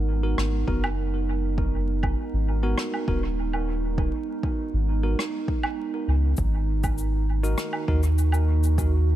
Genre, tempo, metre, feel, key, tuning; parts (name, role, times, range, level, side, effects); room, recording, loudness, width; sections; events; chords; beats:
ambient dub; 100 BPM; 4/4; straight; G# minor; A4 = 440 Hz
warbly tape-like pad; sustained chords; 0.0-9.2 s; D#3 to A#4; -30 LUFS; right 5 dB; chorus, built-in reverb
soft dub sub bass; bass; 0.0-9.2 s; D#1 to D#2; -23 LUFS; equal
bell-like tine electric piano; stabs; 0.2-8.0 s; B3 to A#4; -35 LUFS; left 2 dB; vintage 12-bit sampler grit, dub echo
rim click, woodblock and cabasa; drums; 0.4-8.9 s; -33 LUFS; right 1 dB; dub echo
electronic kick drum; drums; 0.7-8.9 s; -28 LUFS; equal; overdrive
studio ambience; vinyl crackle; -22 LUFS; side -13 dB against mid
0.0-9.2 A section
0.0 G#m9; 6.4 D#m
0.38 0.98 | 1.58 2.18 2.78 3.38 | 3.98 4.58 5.18 5.78 | 6.38 6.98 7.58 8.18 | 8.78